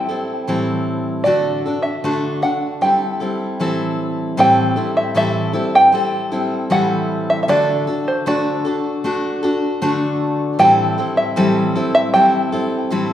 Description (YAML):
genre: acoustic folk duo or small band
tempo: 77 BPM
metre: 4/4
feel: straight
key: A dorian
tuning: A4 = 440 Hz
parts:
  - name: open-back banjo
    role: melody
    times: 0.0-13.1 s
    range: C5 to G5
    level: -16 LUFS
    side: right 1 dB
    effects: none
  - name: picked steel-string acoustic guitar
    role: accompaniment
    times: 0.0-13.1 s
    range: A2 to A4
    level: -18 LUFS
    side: left 1 dB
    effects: none
room: wet concert hall reverb, RT60 2.3 s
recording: recorded in a church or concert hall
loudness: -15 LUFS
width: side -11 dB against mid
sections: 0.0-4.4 A section; 4.4-13.1 A section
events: none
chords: 0.0 Am7; 1.3 D; 2.8 Am7; 7.5 D; 10.6 Am7